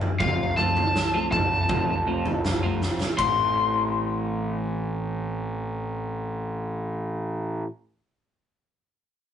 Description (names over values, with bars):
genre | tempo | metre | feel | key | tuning
quiet-loud alternative rock | 80 BPM | 4/4 | straight | A minor | A4 = 440 Hz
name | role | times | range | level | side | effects
fuzz picked electric bass | bass | 0.0-7.6 s | F1 to A1 | -29 LUFS | right 1 dB | overdrive
huge arena drum kit | drums | 0.0-3.4 s | kick drum, ride cymbal, snare drum, toms | -26 LUFS | equal | none
lead guitar through a small cranked amp | melody | 0.2-6.9 s | F5 to C6 | -25 LUFS | left 2 dB | overdrive, tape echo
twelve-string electric guitar | arpeggios | 0.2-7.7 s | A2 to F4 | -32 LUFS | equal | none
room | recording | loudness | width
light reverb | rough rehearsal-room recording, nothing above 10.7 kHz | -23 LUFS | side -9 dB against mid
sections
0.0-3.2 A section; 3.2-6.2 B section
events
drum fill 2.8-3.2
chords
0.2 F; 3.2 Am